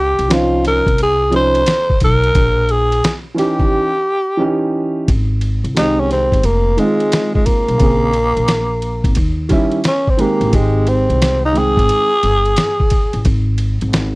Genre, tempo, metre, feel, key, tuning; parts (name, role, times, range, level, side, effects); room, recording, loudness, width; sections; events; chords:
hip hop, jazz-hop; 88 BPM; 4/4; swing 66% on 16ths; Ab major; A4 = 440 Hz
growling tenor saxophone; melody; 0.0-13.3 s; Ab3 to C5; -16 LUFS; equal
upright bass; bass; 0.0-14.2 s; F1 to Eb2; -18 LUFS; equal
trip hop sampler-style drum kit; drums; 0.2-14.1 s; hi-hat, kick drum, ride cymbal, snare drum; -17 LUFS; equal
dark concert grand piano; accompaniment; 0.3-12.1 s; Db3 to G5; -18 LUFS; right 2 dB
little or no reverb; dry, close 1970s-style studio recording; -12 LUFS; side -24 dB against mid
0.0-5.1 A section; 5.1-14.2 B section
break 3.7-5.1; tenor saxophone solo 5.1-14.2
0.0 Dbmaj9; 2.3 Bbm; 3.7 Eb7b9; 5.1 Abmaj7; 6.4 Fm7; 7.8 Bbm9; 9.2 Eb7b9; 10.5 Abmaj7